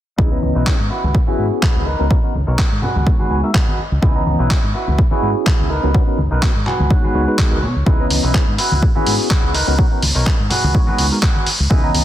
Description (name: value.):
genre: filtered disco house.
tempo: 125 BPM.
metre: 4/4.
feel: swing 55% on 16ths.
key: C# dorian.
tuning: A4 = 440 Hz.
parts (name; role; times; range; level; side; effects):
bell-like tine electric piano; accompaniment; 0.2-12.0 s; E3 to A#5; -22 LUFS; equal; phaser, sidechain pumping, low-pass filter.
clean electric guitar; riff; 0.2-11.9 s; D#4 to G#5; -24 LUFS; right 1 dB; sidechain pumping, low-pass filter.
deep dub fingered electric bass; bass; 0.2-12.0 s; B1 to B2; -19 LUFS; equal; sidechain pumping, low-pass filter.
electronic kick drum; drums; 0.2-11.8 s; none; -16 LUFS; equal; none.
tambourine and congas; percussion; 0.2-12.0 s; none; -27 LUFS; left 2 dB; sidechain pumping on perc, low-pass filter on perc.
dusty soul sampler-style drum kit; drums; 0.7-12.0 s; handclaps, hi-hat; -22 LUFS; equal; soft clipping on snare.
room: digital ambience.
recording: dense, heavily limited modern master.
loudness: -14 LUFS.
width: side -12 dB against mid.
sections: 0.2-12.0 A section.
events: filter sweep 0.2-12.0; clean electric guitar fill 3.1-4.0, 6.4-7.9.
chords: 0.2 C#m9; 0.9 F#7sus4/C#; 1.9 Bmaj7/C#; 2.8 G#m7/C#; 4.0 C#m9; 4.7 F#7sus4/C#; 5.7 Bmaj7/C#; 6.7 G#m7/C#; 7.9 C#m9; 8.6 F#7sus4/C#; 9.5 Bmaj7/C#; 10.5 G#m7/C#.